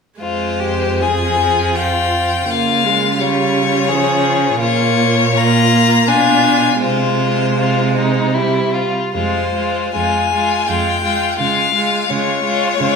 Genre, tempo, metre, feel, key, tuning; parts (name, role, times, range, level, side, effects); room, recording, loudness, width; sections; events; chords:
classical, slow romantic movement for string quartet; 71-87 BPM; 3/4; rubato; F minor; A4 = 440 Hz
bright violin; melody; 0.2-13.0 s; C5 to Bb5; -17 LUFS; left 8 dB
warm violin; second line; 0.2-13.0 s; Eb4 to Ab4; -19 LUFS; left 4 dB
clear viola; accompaniment; 0.2-13.0 s; F3 to D4; -20 LUFS; right 4 dB
warm cello; bass; 0.2-13.0 s; F2 to Db3; -20 LUFS; right 4 dB
wet recital hall reverb, RT60 1.3 s; minimal, uncompressed stereo recording; -13 LUFS; side -5 dB against mid
0.2-13.0 A section
0.2 Fm; 2.5 Db; 4.6 Bbm; 6.1 Bdim7; 6.8 Fm/C; 8.4 C; 9.1 Fm; 11.4 Db